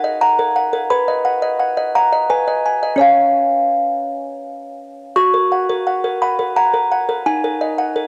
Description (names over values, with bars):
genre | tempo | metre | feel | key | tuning
classical, lullaby for music box | 86 BPM | 3/4 | straight | F# major | A4 = 440 Hz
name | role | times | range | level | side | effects
music box | solo | 0.0-8.1 s | C#4 to C#6 | -17 LUFS | equal | cassette tape
room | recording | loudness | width
moderate lush hall reverb, RT60 2.8 s | home recording on cassette | -17 LUFS | mono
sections
0.0-8.1 A section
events
none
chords
0.0 D#m; 0.9 B; 2.3 G#m/B; 3.0 C#; 5.2 F#; 7.3 D#m